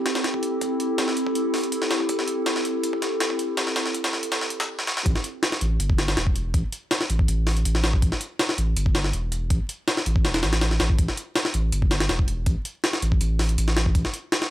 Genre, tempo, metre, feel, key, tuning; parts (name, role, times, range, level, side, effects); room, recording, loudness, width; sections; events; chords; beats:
drum and bass, jungle; 162 BPM; 4/4; straight; A minor; A4 = 441 Hz
warbly tape-like pad; sustained chords; 0.0-4.6 s; C4 to A4; -25 LUFS; equal; chorus, built-in reverb
jungle sampler-style drum kit; drums; 0.1-14.5 s; hi-hat, kick drum, snare drum; -23 LUFS; equal; overdrive, high-pass filter on hats, high-pass filter on snare, high-pass filter on kick
saturated sub bass; bass; 5.1-14.0 s; E1 to A1; -23 LUFS; equal
digital ambience; dry, gritty hardware recording, vinyl crackle, high-pass filter; -21 LUFS; side -13 dB against mid
0.0-5.1 A section; 5.1-14.5 B section
build-up 0.0-5.1; filter sweep 0.0-5.1; drum fill 4.8; drop 5.1-14.5
0.0 Am7; 5.1 A5
0.24 | 0.61 0.98 1.36 1.73 | 2.10 2.47 2.84 3.21 | 3.58 3.95 4.32 4.69 | 5.06 5.43 5.80 6.17 | 6.54 6.91 7.28 7.65 | 8.02 8.39 8.76 9.13 | 9.50 9.87 10.24 10.62 | 10.98 11.36 11.73 12.10 | 12.47 12.84 13.21 13.58 | 13.95 14.32